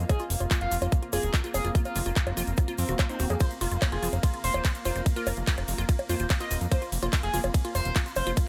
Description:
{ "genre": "psychedelic trance", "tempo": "145 BPM", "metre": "4/4", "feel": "straight", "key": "unclear", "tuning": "A4 = 440 Hz", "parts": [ { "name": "pulsing gated texture", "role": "sustained chords", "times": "0.0-8.5 s", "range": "Bb3", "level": "-43 LUFS", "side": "equal", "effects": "chorus, built-in reverb, sidechain pumping" }, { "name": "fat analog bass", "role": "bass", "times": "0.0-8.3 s", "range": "Eb1 to F2", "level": "-32 LUFS", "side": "equal", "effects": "none" }, { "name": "granular cloud pad", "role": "texture", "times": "0.0-8.5 s", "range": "C4 to Bb5", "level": "-42 LUFS", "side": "equal", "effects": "built-in reverb, sidechain pumping" }, { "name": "overdriven synth lead", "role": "melody", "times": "0.1-8.3 s", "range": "C4 to Eb5", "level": "-36 LUFS", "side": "equal", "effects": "distortion, phaser, sidechain pumping, delay" }, { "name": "woody wave-folded pluck", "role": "riff", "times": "0.1-8.4 s", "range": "Eb4 to Ab4", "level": "-39 LUFS", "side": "equal", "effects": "chorus, vintage 12-bit sampler grit, sidechain pumping, delay" }, { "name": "big-room dance drum kit", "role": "drums", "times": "0.1-8.5 s", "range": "bongos, handclaps, hi-hat, ride cymbal", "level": "-35 LUFS", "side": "equal", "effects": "none" }, { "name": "electronic kick drum", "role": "drums", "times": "0.1-8.5 s", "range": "none", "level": "-27 LUFS", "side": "equal", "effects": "none" }, { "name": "egg shaker", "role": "percussion", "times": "0.1-8.5 s", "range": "none", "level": "-42 LUFS", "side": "equal", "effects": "none" } ], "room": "little or no reverb", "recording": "none", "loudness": "-27 LUFS", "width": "mono", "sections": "0.0-8.5 A section", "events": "none", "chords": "0.0 F5", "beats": "| 0.10 0.51 0.92 1.34 | 1.75 2.16 2.58 2.99 | 3.40 3.82 4.23 4.65 | 5.06 5.47 5.89 6.30 | 6.71 7.13 7.54 7.96 | 8.37" }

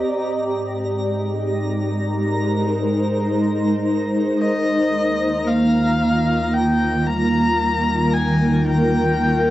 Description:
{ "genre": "ambient", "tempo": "56 BPM", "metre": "4/4", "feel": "straight", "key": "unclear", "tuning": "A4 = 439 Hz", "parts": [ { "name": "granular cloud pad", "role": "sustained chords", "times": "0.0-9.5 s", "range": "Eb3 to Eb5", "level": "-19 LUFS", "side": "equal", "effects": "built-in reverb, cassette tape" }, { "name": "warm sub bass", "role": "bass", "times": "0.0-9.5 s", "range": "Eb2 to Ab2", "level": "-29 LUFS", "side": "equal", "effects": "none" }, { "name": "twinkling granular texture", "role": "texture", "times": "0.0-9.5 s", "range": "Bb5", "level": "-33 LUFS", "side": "right 1 dB", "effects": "built-in reverb, cassette tape" }, { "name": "rich electric violin", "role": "melody", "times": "4.4-9.5 s", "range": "Eb5 to Bb5", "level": "-22 LUFS", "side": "left 3 dB", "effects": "cassette tape, tape echo" }, { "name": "vibraphone with soft mallets", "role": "arpeggios", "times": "5.4-9.5 s", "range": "G3 to Bb3", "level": "-21 LUFS", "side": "right 1 dB", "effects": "cassette tape, tape echo" } ], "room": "wet booth ambience, RT60 0.2 s", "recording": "home recording on cassette", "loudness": "-17 LUFS", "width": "side -14 dB against mid", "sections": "0.0-9.5 A section", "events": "none", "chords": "0.1 Abmaj7; 4.4 Cm7/Eb", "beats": "| 0.09 1.16 2.23 3.30 | 4.37 5.44 6.51 7.58 | 8.66" }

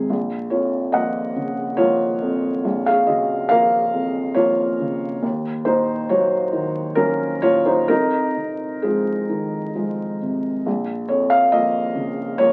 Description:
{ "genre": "neoclassical minimalist piano", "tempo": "63-72 BPM", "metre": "3/4", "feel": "rubato", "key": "Bb minor", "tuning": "A4 = 440 Hz", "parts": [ { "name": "felt-muted upright piano", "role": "solo", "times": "0.0-12.5 s", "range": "Bb1 to Gb5", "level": "-20 LUFS", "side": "equal", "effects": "none" } ], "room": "moderate club reverb, RT60 0.5 s", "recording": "very old 78 rpm record, vinyl crackle", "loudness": "-21 LUFS", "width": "mono", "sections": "0.0-10.7 A section; 10.7-12.5 B section", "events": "none", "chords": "0.1 Bbm; 5.2 Ebm7; 7.9 Fm7; 10.7 Bbm", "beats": "| 0.10 0.94 1.78 | 2.65 3.51 4.37 | 5.24 6.10 6.97 | 7.89 8.84 9.76 | 10.66 11.52 12.39" }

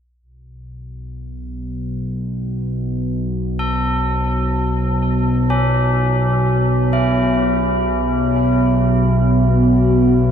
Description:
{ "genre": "dark ambient drone", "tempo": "free time", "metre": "none", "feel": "none", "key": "unclear", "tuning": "A4 = 445 Hz", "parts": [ { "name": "analog drone", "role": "drone", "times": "0.7-10.3 s", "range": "B1 to B2", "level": "-17 LUFS", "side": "left 1 dB", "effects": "chorus" }, { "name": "tubular bells", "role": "arpeggios", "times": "3.6-10.3 s", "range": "C#4 to A4", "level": "-21 LUFS", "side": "right 1 dB", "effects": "tape echo" }, { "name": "dark analog pad", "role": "sustained chords", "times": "8.8-10.3 s", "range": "B3 to F#4", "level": "-18 LUFS", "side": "right 3 dB", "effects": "chorus" } ], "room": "moderate huge ambient reverb, RT60 8.5 s", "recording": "dark, warm production, faint mains hum", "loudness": "-15 LUFS", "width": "side -8 dB against mid", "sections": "0.2-10.3 A section", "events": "filter sweep on synth drone 0.2-10.3", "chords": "0.2 Bsus2", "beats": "free time" }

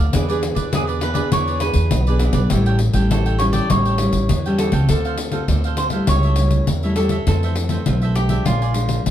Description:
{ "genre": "samba and choro", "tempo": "101 BPM", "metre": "4/4", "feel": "straight", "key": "unclear", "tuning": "A4 = 439 Hz", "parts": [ { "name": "cavaquinho", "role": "accompaniment", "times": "0.0-8.8 s", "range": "D4 to Ab5", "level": "-30 LUFS", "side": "right 7 dB", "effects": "none" }, { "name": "nylon-string guitar", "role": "accompaniment", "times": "0.0-9.1 s", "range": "F2 to A4", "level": "-23 LUFS", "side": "left 1 dB", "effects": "none" }, { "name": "upright bass", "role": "bass", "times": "0.0-9.1 s", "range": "Ab1 to F2", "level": "-19 LUFS", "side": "equal", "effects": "none" }, { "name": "pandeiro", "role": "percussion", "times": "0.1-9.1 s", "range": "none", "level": "-23 LUFS", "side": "left 2 dB", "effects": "none" }, { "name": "cavaquinho", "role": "melody", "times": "0.7-9.0 s", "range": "F4 to D5", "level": "-24 LUFS", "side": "equal", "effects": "none" } ], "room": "light reverb", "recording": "dark, warm production", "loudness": "-16 LUFS", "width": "side -11 dB against mid", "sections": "0.0-4.9 A section; 4.9-9.1 B section", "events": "none", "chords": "0.1 E7; 2.5 A7; 4.9 Dm7; 6.1 A7/C#; 7.3 Fmaj7; 8.5 Bb7", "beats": "| 0.14 0.74 1.33 1.93 | 2.52 3.11 3.71 4.30 | 4.90 5.49 6.08 6.68 | 7.27 7.87 8.46 9.06" }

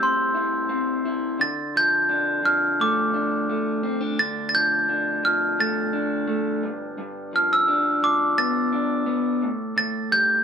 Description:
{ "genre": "indie pop", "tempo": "86 BPM", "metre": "4/4", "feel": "straight", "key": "D dorian", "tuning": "A4 = 440 Hz", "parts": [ { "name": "glockenspiel with soft plastic mallets", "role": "melody", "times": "0.0-10.4 s", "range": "C6 to A6", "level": "-21 LUFS", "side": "right 1 dB", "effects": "none" }, { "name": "electric guitar through a small old amp", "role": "accompaniment", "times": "0.0-10.4 s", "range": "G2 to E4", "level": "-25 LUFS", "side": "left 1 dB", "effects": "warbly pitch drift" } ], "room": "wet studio reverb, RT60 0.8 s", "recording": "band playing live in one room", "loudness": "-20 LUFS", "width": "side -7 dB against mid", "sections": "0.0-10.4 A section", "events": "none", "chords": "0.0 Am7; 1.4 Dm; 6.6 G7; 9.4 A5", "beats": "0.01 0.70 | 1.40 2.10 2.79 3.49 | 4.19 4.88 5.58 6.28 | 6.97 7.67 8.37 9.06 | 9.76" }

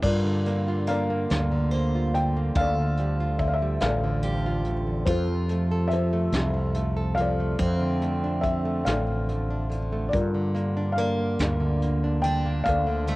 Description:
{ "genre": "acoustic folk-pop ballad", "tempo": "48 BPM (dotted quarters)", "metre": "6/8", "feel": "straight", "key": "unclear", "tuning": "A4 = 440 Hz", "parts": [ { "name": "felt-muted upright piano", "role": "melody", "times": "0.0-13.2 s", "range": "F4 to G5", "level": "-29 LUFS", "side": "left 2 dB", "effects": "cassette tape" }, { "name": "nylon-string guitar", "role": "accompaniment", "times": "0.0-13.2 s", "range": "D2 to A4", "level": "-30 LUFS", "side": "right 2 dB", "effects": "cassette tape" }, { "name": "pedal harmonium", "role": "sustained chords", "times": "0.0-13.2 s", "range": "C3 to A4", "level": "-37 LUFS", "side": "left 1 dB", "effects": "cassette tape" }, { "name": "mellow fretless electric bass", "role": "bass", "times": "0.0-13.2 s", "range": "A1 to G2", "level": "-26 LUFS", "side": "equal", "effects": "none" }, { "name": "soft brush drum kit", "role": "drums", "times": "0.0-13.2 s", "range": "crash cymbal, hi-hat, kick drum, snare drum", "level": "-31 LUFS", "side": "equal", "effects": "cassette tape" }, { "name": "picked steel-string acoustic guitar", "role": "arpeggios", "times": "0.9-13.2 s", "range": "A3 to C5", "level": "-33 LUFS", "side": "right 1 dB", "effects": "cassette tape" } ], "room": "studio ambience", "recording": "home recording on cassette", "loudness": "-23 LUFS", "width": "side -19 dB against mid", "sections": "0.0-13.2 A section", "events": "none", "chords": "0.0 Gm7; 2.6 Dm; 5.1 F; 7.6 Dm/F; 10.1 Gm7", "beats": "| 0.02 1.29 | 2.56 3.81 | 5.07 6.33 | 7.59 8.86 | 10.13 11.40 | 12.66" }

